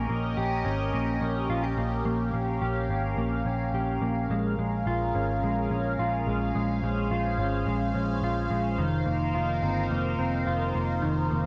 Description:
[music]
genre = dream pop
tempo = 107 BPM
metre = 4/4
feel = straight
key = Bb dorian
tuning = A4 = 437 Hz
[part]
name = phased analog pad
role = sustained chords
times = 0.0-11.5 s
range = Db4 to F5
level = -34 LUFS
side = equal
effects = phaser, chorus
[part]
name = mellow electric guitar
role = arpeggios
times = 0.0-11.5 s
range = Eb3 to G4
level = -32 LUFS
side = equal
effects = analog chorus, tape echo
[part]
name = vintage muted picked electric bass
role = bass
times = 0.0-11.5 s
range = F1 to Bb1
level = -32 LUFS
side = equal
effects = none
[sound]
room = light reverb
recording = dry, gritty hardware recording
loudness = -28 LUFS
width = mono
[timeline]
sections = 0.0-11.5 A section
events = none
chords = 0.0 Eb7; 4.3 Bbm7; 8.8 F7sus4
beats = 0.38 0.94 1.50 | 2.06 2.62 3.18 3.74 | 4.30 4.86 5.42 5.98 | 6.54 7.10 7.67 8.23 | 8.79 9.35 9.91 10.47 | 11.03

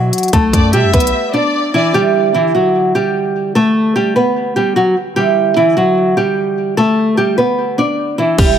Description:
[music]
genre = hip hop, trap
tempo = 149 BPM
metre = 4/4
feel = half-time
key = E minor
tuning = A4 = 440 Hz
[part]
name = nylon-string guitar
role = melody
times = 0.0-8.6 s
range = E3 to D5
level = -12 LUFS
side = equal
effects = none
[part]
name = long sustained 808-style bass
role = bass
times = 0.0-1.1, 8.4-8.6 s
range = E1 to B2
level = -17 LUFS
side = equal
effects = none
[part]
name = trap drum kit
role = drums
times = 0.1-1.1, 8.4-8.5 s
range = crash cymbal, hi-hat, kick drum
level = -14 LUFS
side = equal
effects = none
[part]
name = warm studio violin section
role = second line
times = 0.5-1.9 s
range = D5 to E5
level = -20 LUFS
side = left 2 dB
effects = ping-pong delay
[part]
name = concert harp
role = accompaniment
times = 1.9-8.6 s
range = D3 to E4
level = -20 LUFS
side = right 6 dB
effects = none
[sound]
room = light reverb, studio reverb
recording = none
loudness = -11 LUFS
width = side -9 dB against mid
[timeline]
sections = 0.0-1.9 A section; 1.9-8.4 B section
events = break 1.1-1.9; hi-hats muted 8.4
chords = 0.0 Bm7; 1.9 Em7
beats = | 0.33 0.73 1.14 1.54 | 1.94 2.34 2.75 3.15 | 3.55 3.96 4.36 4.76 | 5.16 5.57 5.97 6.37 | 6.77 7.18 7.58 7.98 | 8.38

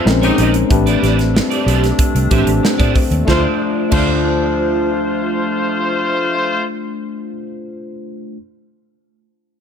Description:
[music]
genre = polished 1980s jazz-funk pop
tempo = 93 BPM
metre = 4/4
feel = straight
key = D dorian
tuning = A4 = 437 Hz
[part]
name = tine electric piano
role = accompaniment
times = 0.0-8.4 s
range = Ab3 to C5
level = -19 LUFS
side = left 4 dB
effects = wide subtle chorus
[part]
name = mellow woodwind section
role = sustained chords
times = 0.0-6.6 s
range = C3 to C5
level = -25 LUFS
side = equal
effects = none
[part]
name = electric guitar at the edge of break-up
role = riff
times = 0.0-7.5 s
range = Eb4 to E5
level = -22 LUFS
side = right 7 dB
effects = ensemble chorus
[part]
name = vintage muted fingered electric bass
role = bass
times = 0.1-7.3 s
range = A1 to A2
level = -17 LUFS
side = equal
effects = none
[part]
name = modern studio drum kit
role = drums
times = 0.1-4.1 s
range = crash cymbal, hi-hat, kick drum, snare drum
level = -18 LUFS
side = right 1 dB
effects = gated reverb
[part]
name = warm horn section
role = second line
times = 0.2-6.6 s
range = A3 to C5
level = -21 LUFS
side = left 2 dB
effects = none
[sound]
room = light reverb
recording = none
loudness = -13 LUFS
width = side -7 dB against mid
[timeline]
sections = 0.0-3.3 A section; 3.3-5.9 B section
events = none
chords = 0.1 Bbm11; 0.7 Am11; 3.3 Dm7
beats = 0.06 | 0.70 1.35 1.99 2.64 | 3.28 3.93 4.57 5.22

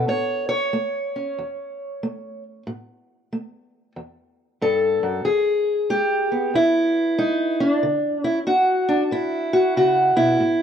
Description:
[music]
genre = acoustic country blues, solo or duo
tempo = 93 BPM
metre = 4/4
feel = swing 64% on 8ths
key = A major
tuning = A4 = 440 Hz
[part]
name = fingerpicked steel-string acoustic guitar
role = solo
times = 0.0-10.6 s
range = E2 to C#5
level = -19 LUFS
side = equal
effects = none
[sound]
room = studio reverb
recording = dry, close 1970s-style studio recording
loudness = -18 LUFS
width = side -8 dB against mid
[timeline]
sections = 0.0-10.6 A section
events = none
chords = 0.1 A; 5.2 E; 7.8 D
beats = | 0.09 0.73 1.38 2.02 | 2.67 3.31 3.96 4.60 | 5.25 5.89 6.54 7.18 | 7.83 8.47 9.12 9.76 | 10.41

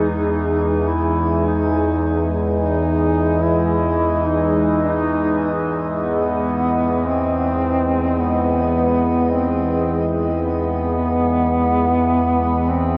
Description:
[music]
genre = dark ambient drone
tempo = 54 BPM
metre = 4/4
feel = straight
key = unclear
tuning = A4 = 441 Hz
[part]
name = mellow duduk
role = melody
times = 0.0-13.0 s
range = B3 to E4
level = -22 LUFS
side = equal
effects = shimmer reverb, diffuse ambient delay
[part]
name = deep dark ambient pad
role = sustained chords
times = 0.0-13.0 s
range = G#3 to D#5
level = -26 LUFS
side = equal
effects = chorus, built-in reverb, shimmer reverb
[part]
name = overtone-sweeping drone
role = drone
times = 0.0-13.0 s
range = E2 to E3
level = -23 LUFS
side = equal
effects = chorus, built-in reverb
[sound]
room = wet huge ambient reverb, RT60 7.6 s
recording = worn, warbling old tape, cassette tape, warbly pitch drift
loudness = -19 LUFS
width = mono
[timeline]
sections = 0.0-13.0 A section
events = none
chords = 0.0 G#5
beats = 0.37 | 1.50 2.62 3.75 4.86 | 5.97 7.08 8.20 9.31 | 10.42 11.54 12.68

